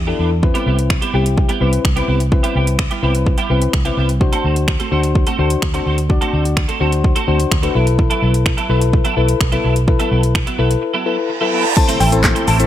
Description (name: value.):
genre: dance-pop.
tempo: 127 BPM.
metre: 4/4.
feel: straight.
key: unclear.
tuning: A4 = 445 Hz.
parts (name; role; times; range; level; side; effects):
vintage muted fingered electric bass; bass; 0.0-12.7 s; A1 to E2; -17 LUFS; equal; sidechain pumping.
downlifter, reverse cymbal and impact; sound effects; 0.0-0.4, 11.1-12.7 s; none; -22 LUFS; right 3 dB; none.
soft electric-piano-like synth keys; accompaniment; 0.1-12.7 s; C4 to D5; -20 LUFS; left 6 dB; chorus, sidechain pumping.
twelve-string electric guitar; riff; 0.1-12.6 s; E3 to A4; -22 LUFS; right 5 dB; ensemble chorus.
deep house drum kit; drums; 0.4-12.7 s; crash cymbal, finger snaps, handclaps, hi-hat, kick drum, shaker, snare drum; -17 LUFS; equal; overdrive.
mallet-like synth pluck; melody; 11.8-12.7 s; G5 to A5; -20 LUFS; left 3 dB; chorus, digital delay.
filtered supersaw swell; sustained chords; 11.8-12.7 s; C3 to A4; -23 LUFS; right 1 dB; sidechain pumping.
group handclap; percussion; 12.2-12.4 s; none; barely audible; none; none.
room: digital ambience.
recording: none.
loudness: -13 LUFS.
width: side -12 dB against mid.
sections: 0.0-11.8 A section.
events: reverse cymbal 11.1-11.8; impact 11.8-12.7.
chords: 0.4 Cmaj7; 4.2 D7; 7.8 B7sus4; 11.8 Am.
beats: | 0.43 0.90 1.37 1.85 | 2.32 2.79 3.26 3.74 | 4.21 4.68 5.15 5.62 | 6.10 6.57 7.04 7.51 | 7.99 8.46 8.93 9.40 | 9.88 10.35 10.82 11.29 | 11.77 12.24.